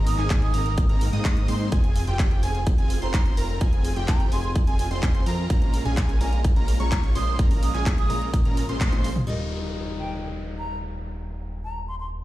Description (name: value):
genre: EDM, festival progressive house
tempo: 127 BPM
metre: 4/4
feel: straight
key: unclear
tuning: A4 = 439 Hz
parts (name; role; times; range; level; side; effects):
- wide unison lead; arpeggios; 0.0-9.1 s; G5 to Eb6; -35 LUFS; equal; sidechain pumping, dub echo
- supersaw chords; riff; 0.0-9.1 s; Ab3 to Eb5; -32 LUFS; right 1 dB; wide subtle chorus, cassette tape, sidechain pumping, dub echo
- fat analog bass; bass; 0.0-12.2 s; Eb1 to Ab2; -27 LUFS; equal; sidechain pumping
- breathy concert flute; melody; 0.1-12.1 s; G5 to Eb6; -34 LUFS; right 3 dB; dub echo
- big-room dance drum kit; drums; 0.1-9.3 s; handclaps, hi-hat, toms; -33 LUFS; equal; overdrive, studio reverb
- electronic kick drum; drums; 0.3-8.9 s; none; -21 LUFS; equal; overdrive, studio reverb
- picked steel-string acoustic guitar; accompaniment; 9.3-12.2 s; G3 to Bb4; -35 LUFS; left 3 dB; sidechain pumping
- downlifter; sound effects; 9.3-12.2 s; none; -37 LUFS; left 2 dB; none
room: digital ambience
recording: played on a big sound system in a bare room, large studio reverb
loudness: -21 LUFS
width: side -16 dB against mid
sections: 0.0-9.3 A section; 9.3-12.2 B section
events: drop 0.0-9.3; drum fill 8.8-9.3; band accent 8.8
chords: 0.0 Abadd9; 1.7 Fm; 5.5 Bbm7; 9.3 Ebadd9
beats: 0.30 0.78 1.25 | 1.72 2.19 2.67 3.14 | 3.61 4.08 4.55 5.03 | 5.50 5.97 6.45 6.92 | 7.39 7.86 8.34 8.81 | 9.28 9.75 10.22 10.70 | 11.17 11.64 12.11